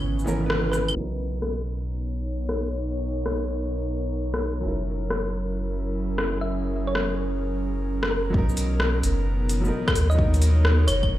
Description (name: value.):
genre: future garage.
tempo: 130 BPM.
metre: 4/4.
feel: swing 66% on 16ths.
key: unclear.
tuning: A4 = 439 Hz.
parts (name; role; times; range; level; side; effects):
warm upright piano; accompaniment; 0.0-11.2 s; E3 to B4; -32 LUFS; right 1 dB; sidechain pumping, analog delay.
airy breathy pad; sustained chords; 0.0-11.2 s; B2 to C#5; -30 LUFS; right 1 dB; chorus, sidechain pumping.
warm sub bass; bass; 0.0-11.2 s; F#1 to D#2; -25 LUFS; equal; tube saturation, sidechain pumping.
deep house drum kit; drums; 0.2-11.1 s; claves, hi-hat, rim click, shaker; -28 LUFS; left 2 dB; overdrive.
thumb-piano-like synth pluck; melody; 0.7-1.0, 6.4-11.2 s; A#4 to E5; -32 LUFS; left 1 dB; chorus, analog delay.
electronic kick drum; drums; 8.3-11.1 s; none; -23 LUFS; equal; overdrive.
room: light reverb, digital ambience.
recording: played on a big sound system in a bare room, large studio reverb, low-pass filter.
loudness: -22 LUFS.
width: side -14 dB against mid.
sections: 1.0-8.3 A section; 8.3-11.2 B section.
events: break 0.0-1.0; band accent 0.5; filter sweep on analog synth pad 1.0-8.3.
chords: 0.0 C#m7; 1.0 Bmaj7; 4.6 F#7; 8.3 Bmaj7.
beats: 0.03 0.49 | 0.95 1.42 1.88 2.34 | 2.80 3.26 3.73 4.19 | 4.65 5.11 5.57 6.03 | 6.49 6.96 7.42 7.88 | 8.34 8.80 9.26 9.72 | 10.19 10.65 11.11.